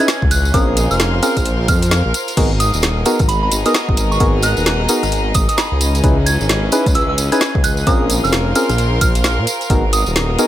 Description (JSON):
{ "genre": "UK garage, two-step garage", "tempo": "131 BPM", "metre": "4/4", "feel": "swing 61% on 16ths", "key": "G# dorian", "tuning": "A4 = 440 Hz", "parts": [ { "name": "soft synth bell", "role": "melody", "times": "0.0-10.1 s", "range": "B5 to G#6", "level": "-22 LUFS", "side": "right 2 dB", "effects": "chorus, tape echo" }, { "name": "dark studio violin section", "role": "sustained chords", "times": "0.0-10.5 s", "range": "B3 to B#4", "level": "-27 LUFS", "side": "equal", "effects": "sidechain pumping" }, { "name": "percussive organ stab", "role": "stabs", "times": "0.0-10.5 s", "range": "B3 to B4", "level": "-19 LUFS", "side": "equal", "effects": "chorus, cassette tape" }, { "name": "bright chamber string section", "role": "texture", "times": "0.0-10.5 s", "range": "C#4 to B#5", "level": "-25 LUFS", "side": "left 1 dB", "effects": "sidechain pumping" }, { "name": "garage drum kit", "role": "drums", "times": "0.1-10.5 s", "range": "crash cymbal, hi-hat, rim click, snare drum", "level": "-20 LUFS", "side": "equal", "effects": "studio reverb" }, { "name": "tambourine", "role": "percussion", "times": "0.1-10.5 s", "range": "none", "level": "-24 LUFS", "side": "right 3 dB", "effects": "none" }, { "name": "dark detuned saw bass", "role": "bass", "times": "0.2-10.4 s", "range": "D#1 to A#2", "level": "-18 LUFS", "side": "equal", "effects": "none" }, { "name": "electronic kick drum", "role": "drums", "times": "0.2-9.8 s", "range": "none", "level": "-17 LUFS", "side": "equal", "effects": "studio reverb" } ], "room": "light reverb, digital ambience", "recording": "none", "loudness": "-13 LUFS", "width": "side -12 dB against mid", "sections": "0.0-10.5 A section", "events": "none", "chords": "0.0 C#m9; 0.5 A#m9; 2.4 G#m9; 5.8 C#m9; 7.9 A#m9; 9.7 G#m9" }